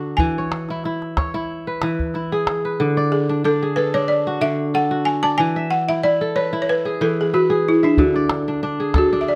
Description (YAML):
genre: west african traditional, West African string and xylophone music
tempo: 92 BPM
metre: 4/4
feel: swing 54% on 16ths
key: D lydian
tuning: A4 = 441 Hz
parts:
  - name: balafon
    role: melody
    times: 0.0-9.4 s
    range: D4 to A5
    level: -21 LUFS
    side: equal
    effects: none
  - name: kora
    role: arpeggios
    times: 0.0-9.4 s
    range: D3 to E5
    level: -23 LUFS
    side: equal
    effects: none
  - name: calabash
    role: percussion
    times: 0.2-2.6, 8.0-9.1 s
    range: none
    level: -24 LUFS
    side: equal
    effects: none
room: light reverb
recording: close, detailed microphones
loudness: -20 LUFS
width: mono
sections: 0.0-2.8 A section; 2.8-9.4 B section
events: balafon solo 2.8-9.4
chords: 0.2 E; 2.8 D; 5.4 E; 8.0 D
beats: | 0.19 0.84 1.49 2.14 | 2.79 3.44 4.09 4.74 | 5.39 6.04 6.68 7.33 | 7.98 8.62 9.27